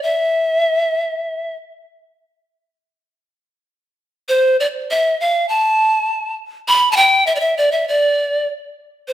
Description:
andean folk; 100 BPM; 2/4; straight; A4 = 436 Hz
breathy bright pan flute; solo; 0.0-1.6, 4.3-9.1 s; C5 to B5; -14 LUFS; equal
moderate recital hall reverb, RT60 1.4 s; minimal, uncompressed stereo recording; -14 LUFS; side -12 dB against mid
0.0-4.3 A section; 4.3-9.1 B section
speeding up 0.0-9.1

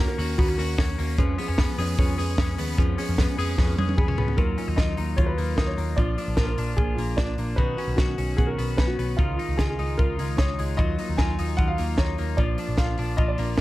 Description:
jangly indie pop; 150 BPM; 4/4; straight; Eb minor; A4 = 439 Hz
warm upright piano; melody; 0.0-0.9, 4.0-13.6 s; F4 to Ab5; -31 LUFS; equal; slapback echo
fingerpicked plugged-in steel-string acoustic guitar; accompaniment; 0.0-13.6 s; F2 to Cb5; -32 LUFS; right 4 dB
twelve-string electric guitar; arpeggios; 0.0-13.6 s; D#3 to Ab4; -31 LUFS; left 6 dB; spring reverb
vintage muted picked electric bass; bass; 0.0-13.6 s; Bb1 to F2; -28 LUFS; equal
compact cocktail drum kit; drums; 0.2-13.6 s; hi-hat, kick drum, snare drum, toms; -25 LUFS; equal
small room ambience; -22 LUFS; side -17 dB against mid
0.0-4.4 A section; 4.4-13.6 B section
drum fill 3.6-4.4
0.0 Ebm7; 1.2 Db7; 4.4 Ebmadd9; 6.0 Bb; 7.6 Badd9; 9.2 Dbadd9; 10.8 Ebmadd9; 12.4 Bb

